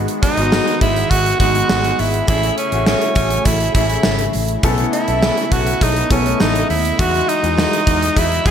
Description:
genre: 1980s-style pop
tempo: 102 BPM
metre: 4/4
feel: straight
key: E major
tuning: A4 = 438 Hz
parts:
  - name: clear concert grand piano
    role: accompaniment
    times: 0.0-8.5 s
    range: E3 to A4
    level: -22 LUFS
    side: left 4 dB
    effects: wide subtle chorus
  - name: phased analog pad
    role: sustained chords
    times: 0.0-8.5 s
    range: C#3 to D#5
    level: -26 LUFS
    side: right 1 dB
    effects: phaser, chorus
  - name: vintage muted fingered electric bass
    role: bass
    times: 0.0-8.5 s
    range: G#1 to E2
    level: -21 LUFS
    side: equal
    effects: none
  - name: gated 80s drum kit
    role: drums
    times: 0.1-8.5 s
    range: hi-hat, kick drum, snare drum, tambourine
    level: -18 LUFS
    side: equal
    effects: gated reverb
  - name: raspy tenor saxophone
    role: melody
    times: 0.2-8.5 s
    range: C#4 to G#4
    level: -19 LUFS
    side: right 2 dB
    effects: none
  - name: warm symphonic violin section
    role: second line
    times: 0.2-8.5 s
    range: C#5 to G#5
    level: -30 LUFS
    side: equal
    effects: none
  - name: cowbell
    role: percussion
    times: 0.5-8.3 s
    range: none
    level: -34 LUFS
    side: right 2 dB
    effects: none
room: moderate lush hall reverb, RT60 1.9 s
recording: bright 1980s-style digital production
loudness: -14 LUFS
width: side -8 dB against mid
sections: 0.0-8.5 A section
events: none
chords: 0.0 G#m7; 2.3 Amaj7; 4.6 B9sus4; 7.0 Emaj9

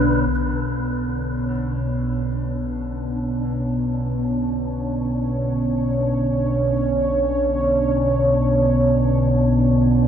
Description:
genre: dark ambient drone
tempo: free time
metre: none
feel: none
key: B minor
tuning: A4 = 440 Hz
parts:
  - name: dark analog pad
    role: sustained chords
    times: 0.0-10.1 s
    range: B3 to C#5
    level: -20 LUFS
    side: equal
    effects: chorus
  - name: bright grand piano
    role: arpeggios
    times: 0.0-1.5 s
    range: D3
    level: -45 LUFS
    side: left 4 dB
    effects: diffuse ambient delay
  - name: deep rumbling drone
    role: drone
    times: 0.0-10.1 s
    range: B1 to B2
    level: -24 LUFS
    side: right 1 dB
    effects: built-in reverb
  - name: wind-like tuned noise texture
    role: texture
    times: 0.0-10.1 s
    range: D4 to B4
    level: -31 LUFS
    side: left 1 dB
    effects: built-in reverb
room: wet huge ambient reverb, RT60 7.5 s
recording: dreamy mix soaked in reverb, cassette tape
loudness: -18 LUFS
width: side -9 dB against mid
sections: 0.3-10.1 A section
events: none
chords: 0.3 Bmadd9

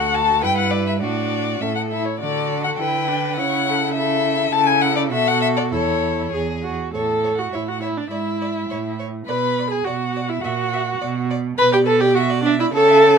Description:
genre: quick classical-period movement for string quartet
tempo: 103 BPM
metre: 2/4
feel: straight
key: A major from 4.5 s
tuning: A4 = 440 Hz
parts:
  - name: dark violin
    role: melody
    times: 0.0-13.2 s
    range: C#5 to B5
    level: -22 LUFS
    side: left 7 dB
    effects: none
  - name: rich violin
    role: second line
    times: 0.0-13.2 s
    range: F#4 to E5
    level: -27 LUFS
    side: left 4 dB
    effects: none
  - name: rich viola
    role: accompaniment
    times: 0.0-13.2 s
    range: C#4 to B4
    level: -20 LUFS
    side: right 2 dB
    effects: none
  - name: rich cello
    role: bass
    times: 0.0-13.2 s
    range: D2 to D3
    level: -24 LUFS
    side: right 6 dB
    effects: none
room: light reverb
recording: none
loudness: -18 LUFS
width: side -6 dB against mid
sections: 0.0-6.9 A section; 6.9-13.2 B section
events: none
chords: 0.4 G6; 1.0 D/A; 1.6 A; 2.2 D; 2.8 Em7/D; 3.4 A/C#; 5.1 B5; 5.7 A/E; 6.3 E; 6.9 A; 8.1 E/G#; 8.7 A5; 9.3 Bm; 10.4 F#7/A#; 11.0 Bm; 12.2 E5/B

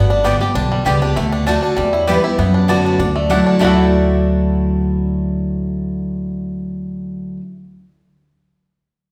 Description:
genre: bluegrass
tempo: 196 BPM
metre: 4/4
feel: swing 53% on 8ths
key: D major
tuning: A4 = 440 Hz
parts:
  - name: bluegrass banjo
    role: melody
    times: 0.0-7.4 s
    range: G3 to A4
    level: -25 LUFS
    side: equal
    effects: none
  - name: picked steel-string acoustic guitar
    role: melody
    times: 0.0-7.4 s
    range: A4 to B5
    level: -25 LUFS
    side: equal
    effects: none
  - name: picked steel-string acoustic guitar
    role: accompaniment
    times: 0.0-7.4 s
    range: E2 to G4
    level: -20 LUFS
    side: equal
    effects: none
  - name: upright bass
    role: bass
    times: 0.0-7.4 s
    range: G1 to F#2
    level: -22 LUFS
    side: equal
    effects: none
  - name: mandolin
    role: stabs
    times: 0.2-7.4 s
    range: A3 to A5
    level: -25 LUFS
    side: equal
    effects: none
room: wet recital hall reverb, RT60 1.6 s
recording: recorded in a church or concert hall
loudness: -16 LUFS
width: mono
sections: 0.0-3.6 A section; 3.6-6.0 B section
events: none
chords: 0.0 G; 1.2 D; 1.8 Em; 2.4 Bm7/F#; 3.0 Dadd9

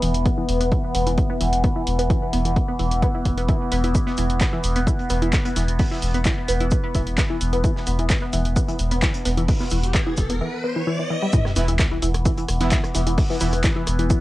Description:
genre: driving peak-time techno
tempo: 130 BPM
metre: 4/4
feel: straight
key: unclear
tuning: A4 = 440 Hz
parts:
  - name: tight sequenced synth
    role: riff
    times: 0.0-14.2 s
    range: E3 to B3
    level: -27 LUFS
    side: left 1 dB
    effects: chorus, phaser, sidechain pumping, cassette tape, tape echo
  - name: warm sub bass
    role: bass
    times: 0.0-14.1 s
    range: E1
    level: -22 LUFS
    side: equal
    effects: tube saturation, sidechain pumping, low-pass filter
  - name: overtone-sweeping drone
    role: drone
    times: 0.0-14.2 s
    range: E3 to B3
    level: -27 LUFS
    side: left 1 dB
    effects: chorus, built-in reverb, phaser, sidechain pumping, cassette tape
  - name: punchy analog drum machine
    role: drums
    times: 0.0-14.2 s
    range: handclaps, hi-hat, rim click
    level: -29 LUFS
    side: equal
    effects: sidechain pumping on hats, cassette tape
  - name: electronic kick drum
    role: drums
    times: 0.3-14.2 s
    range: none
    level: -22 LUFS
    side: equal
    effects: cassette tape
  - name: warm soul drum kit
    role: drums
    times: 3.9-14.2 s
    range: hi-hat, shaker, snare drum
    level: -34 LUFS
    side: right 1 dB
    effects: sidechain pumping on hats, high-pass filter on hats, cassette tape, high-pass filter on snare, sidechain pumping on perc, high-pass filter on perc, high-pass filter on room
  - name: riser and sub drop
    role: sound effects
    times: 8.8-13.2 s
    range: none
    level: -30 LUFS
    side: equal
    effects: none
  - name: supersaw stab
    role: stabs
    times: 11.6-13.5 s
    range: E3 to E4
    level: -29 LUFS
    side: right 3 dB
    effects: sidechain pumping, cassette tape, tape echo
room: light reverb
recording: home recording on cassette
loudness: -19 LUFS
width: side -17 dB against mid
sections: 0.0-11.3 A section; 11.3-14.2 B section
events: riser 8.8-11.3; break 10.4-11.3; drop 11.3-14.2; impact 11.3-13.2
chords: 0.0 E5

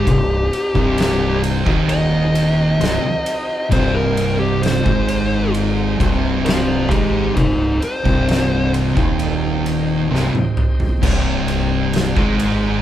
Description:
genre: stoner and doom metal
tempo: 66 BPM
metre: 4/4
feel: straight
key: C minor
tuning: A4 = 440 Hz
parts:
  - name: fuzz lead guitar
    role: melody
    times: 0.0-8.7 s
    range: Eb4 to F5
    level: -21 LUFS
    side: left 1 dB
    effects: distortion
  - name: bright tonewheel organ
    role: sustained chords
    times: 0.0-12.8 s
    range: C4 to G4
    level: -31 LUFS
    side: left 1 dB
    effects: none
  - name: thick fuzz guitar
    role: riff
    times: 0.0-12.8 s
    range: C2 to Ab3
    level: -23 LUFS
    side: left 7 dB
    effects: distortion
  - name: thick fuzz guitar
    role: riff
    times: 0.0-12.8 s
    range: C2 to Ab3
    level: -20 LUFS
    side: right 4 dB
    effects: distortion
  - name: growling fingered electric bass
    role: bass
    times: 0.0-12.8 s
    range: C1 to Ab1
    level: -23 LUFS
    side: equal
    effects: overdrive
  - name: oversized low-tuned drum kit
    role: drums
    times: 0.1-12.6 s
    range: crash cymbal, kick drum, ride cymbal, snare drum, toms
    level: -21 LUFS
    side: equal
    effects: none
room: moderate large studio reverb, RT60 1.2 s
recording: band playing live in one room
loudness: -15 LUFS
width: side -11 dB against mid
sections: 0.0-12.8 A section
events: lead electric guitar solo 0.0-12.8; drum fill 10.1-11.0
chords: 0.0 Cm

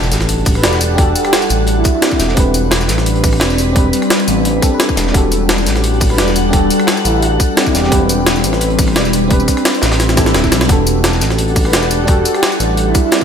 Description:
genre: liquid drum and bass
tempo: 173 BPM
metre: 4/4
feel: straight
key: E minor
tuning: A4 = 441 Hz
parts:
  - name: mellow FM electric piano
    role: accompaniment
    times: 0.0-13.2 s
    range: C4 to D5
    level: -19 LUFS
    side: equal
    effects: chorus, ping-pong delay
  - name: glassy FM pad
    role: sustained chords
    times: 0.1-13.2 s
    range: G3 to F#5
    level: -18 LUFS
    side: left 1 dB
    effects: ensemble chorus, built-in reverb, sidechain pumping
  - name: smooth synth bass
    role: bass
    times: 0.0-12.9 s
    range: D1 to B1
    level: -16 LUFS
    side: equal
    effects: none
  - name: crunchy breakbeat drum kit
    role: drums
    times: 0.0-13.2 s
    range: hi-hat, snare drum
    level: -22 LUFS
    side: equal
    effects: high-pass filter on hats, studio reverb, high-pass filter on snare, high-pass filter on room
  - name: jungle sampler-style drum kit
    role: drums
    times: 0.0-13.2 s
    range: hi-hat, rim click, snare drum, tambourine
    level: -18 LUFS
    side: equal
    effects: studio reverb
  - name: impact and swell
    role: sound effects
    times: 0.0-1.0, 10.2-10.7 s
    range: none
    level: -25 LUFS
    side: right 1 dB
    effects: none
  - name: electronic kick drum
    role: drums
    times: 0.5-13.2 s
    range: none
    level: -14 LUFS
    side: equal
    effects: overdrive, studio reverb
  - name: breathy flute-like synth lead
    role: melody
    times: 0.6-2.2, 6.1-8.2, 11.7-13.2 s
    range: E4 to B4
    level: -21 LUFS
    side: right 2 dB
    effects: analog chorus, ping-pong delay
room: moderate lush hall reverb, RT60 1.8 s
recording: dreamy mix soaked in reverb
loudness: -11 LUFS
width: side -7 dB against mid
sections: 0.0-13.2 A section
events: impact 0.0-1.0; drum fill 10.0-10.7; swell 10.2-10.7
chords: 0.0 Em11; 2.2 Am11/E; 5.1 Em11; 7.7 Am11/E; 10.7 Em11

